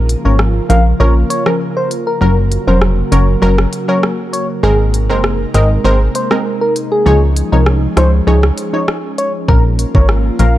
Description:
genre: dancehall.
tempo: 99 BPM.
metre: 4/4.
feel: straight.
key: Bb minor.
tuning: A4 = 440 Hz.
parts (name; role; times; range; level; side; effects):
analog pluck; accompaniment; 0.0-10.6 s; F3 to Db5; -18 LUFS; left 1 dB; chorus, sidechain pumping.
airy breathy pad; sustained chords; 0.0-10.6 s; C3 to Bb4; -20 LUFS; right 1 dB; chorus, sidechain pumping.
plucky analog bass; bass; 0.0-10.6 s; F1 to Db2; -12 LUFS; equal; none.
afro-pop drum kit; drums; 0.1-10.5 s; hi-hat, kick drum, rim click; -16 LUFS; equal; none.
soft struck synth lead; melody; 0.3-10.5 s; Ab4 to F5; -18 LUFS; left 1 dB; chorus, tape echo.
room: digital ambience.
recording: dark, warm production.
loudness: -11 LUFS.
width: side -14 dB against mid.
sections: 0.0-10.6 A section.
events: break 0.0-9.5.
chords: 0.0 Bbm; 2.2 Gb; 4.6 Abadd9; 7.1 Dbadd9; 9.5 Bbm.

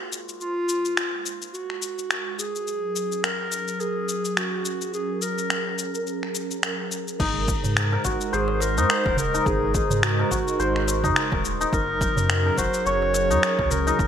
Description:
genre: organic downtempo.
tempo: 106 BPM.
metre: 4/4.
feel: swing 57% on 16ths.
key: unclear.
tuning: A4 = 438 Hz.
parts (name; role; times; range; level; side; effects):
warm clarinet; melody; 0.0-14.1 s; F4 to Db5; -27 LUFS; right 1 dB; digital delay.
warm analog pad; sustained chords; 0.0-14.1 s; Gb3 to C5; -30 LUFS; right 1 dB; chorus, sidechain pumping.
santur; arpeggios; 0.0-1.7, 7.2-14.1 s; Bb3 to Db5; -27 LUFS; left 3 dB; digital delay.
dusty soul sampler-style drum kit; drums; 0.1-14.1 s; crash cymbal, finger snaps, shaker; -27 LUFS; left 2 dB; gated reverb.
warm sub bass; bass; 7.2-14.1 s; Eb1 to Ab2; -26 LUFS; equal; none.
electronic kick drum; drums; 7.2-14.1 s; none; -28 LUFS; equal; overdrive.
darbuka; percussion; 7.4-14.0 s; none; -32 LUFS; right 4 dB; none.
room: moderate plate reverb, RT60 2.7 s.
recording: bright 1980s-style digital production.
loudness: -22 LUFS.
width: side -9 dB against mid.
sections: 0.0-7.2 A section; 7.2-14.1 B section.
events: none.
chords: 0.0 Ab7; 2.7 Gb; 7.2 Ab7; 11.7 Gb.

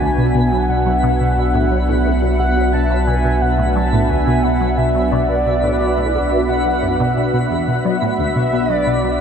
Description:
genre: ambient, sequencer-driven space music.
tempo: 88 BPM.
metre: 4/4.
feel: straight.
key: B dorian.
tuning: A4 = 441 Hz.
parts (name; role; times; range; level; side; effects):
pulse-width lead; melody; 0.0-9.2 s; D5 to A5; -21 LUFS; equal; chorus, shimmer reverb, ping-pong delay.
sweeping resonant pad; sustained chords; 0.0-9.2 s; B3 to F#5; -19 LUFS; right 1 dB; chorus, shimmer reverb.
resonant blip pluck; riff; 0.0-9.2 s; D2 to F#3; -20 LUFS; equal; phaser, ensemble chorus, ping-pong delay.
round analog bass; bass; 0.0-9.2 s; B1; -20 LUFS; equal; tube saturation.
twinkling granular texture; texture; 0.0-9.2 s; B5; -30 LUFS; right 2 dB; built-in reverb, shimmer reverb.
room: wet huge ambient reverb, RT60 8.8 s.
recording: dark, warm production.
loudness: -14 LUFS.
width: side -7 dB against mid.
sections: 0.0-9.2 A section.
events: none.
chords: 0.0 Bm.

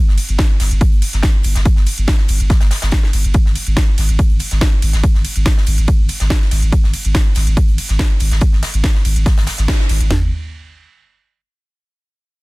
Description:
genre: driving peak-time techno.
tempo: 142 BPM.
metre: 4/4.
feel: straight.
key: unclear.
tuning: A4 = 443 Hz.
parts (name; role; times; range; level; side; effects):
saturated sub bass; bass; 0.1-10.3 s; G1 to Ab1; -16 LUFS; equal; overdrive, sidechain pumping, low-pass filter.
natural country drum kit; drums; 0.1-10.0 s; hi-hat, snare drum; -30 LUFS; left 2 dB; sidechain pumping on hats, high-pass filter on hats, high-pass filter on snare, high-pass filter on room.
techno drum kit; drums; 0.2-10.1 s; hi-hat, ride cymbal, snare drum; -24 LUFS; right 1 dB; overdrive.
techno drum kit; drums; 0.4-10.2 s; kick drum, snare drum, toms; -14 LUFS; equal; overdrive.
room: digital ambience.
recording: dense, heavily limited modern master.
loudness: -12 LUFS.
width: side -23 dB against mid.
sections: 0.0-10.1 A section; 10.1-11.8 B section.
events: drop 0.0-10.1; band accent 9.7.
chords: none.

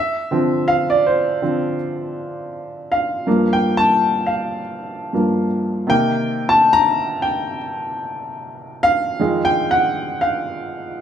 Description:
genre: R&B.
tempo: 81 BPM.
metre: 4/4.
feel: swing 56% on 16ths.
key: G minor.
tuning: A4 = 440 Hz.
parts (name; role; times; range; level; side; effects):
warm upright piano; solo; 0.0-11.0 s; F2 to Bb5; -17 LUFS; equal; none.
room: moderate large studio reverb, RT60 1.0 s.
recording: band playing live in one room.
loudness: -16 LUFS.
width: side -8 dB against mid.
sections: 0.0-11.0 A section.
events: upright piano solo 0.0-11.0.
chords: 0.0 Dm9; 3.3 Gm7; 5.9 Cm7; 9.2 Fm7.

